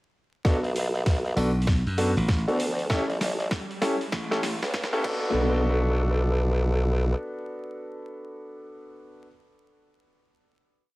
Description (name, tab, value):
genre	glitch hop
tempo	98 BPM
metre	4/4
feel	swing 63% on 16ths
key	B minor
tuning	A4 = 442 Hz
part	warm baby grand piano	stabs	0.4-9.3 s	B3 to A4	-29 LUFS	equal	sidechain pumping, tape echo
part	formant-sweep wobble bass	bass	0.4-7.1 s	A1 to D2	-25 LUFS	equal	chorus, tube saturation, high-pass filter
part	boom bap sampler-style drum kit	drums	0.4-5.2 s	crash cymbal, hi-hat, snare drum	-33 LUFS	equal	studio reverb
part	electronic kick drum	drums	0.4-5.2 s	none	-24 LUFS	equal	overdrive, studio reverb
part	riser	sound effects	2.6-5.3 s	none	-38 LUFS	equal	none
part	glassy slap bass	bass	1.4-4.6 s	A1 to F#2	-26 LUFS	equal	none
room	little or no reverb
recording	dry, gritty hardware recording, vinyl crackle, high-pass filter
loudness	-23 LUFS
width	side -20 dB against mid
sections	0.5-5.3 build; 5.3-7.8 final hit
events	build-up 0.5-5.3; drum fill 0.5-5.3; filter sweep 0.5-5.3; riser 2.6-5.3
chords	0.5 Bm7; 2.9 A7; 5.0 Bm7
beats	| 0.45 1.06 1.68 2.29 | 2.90 3.51 4.12 4.74 | 5.35 5.96 6.57 7.18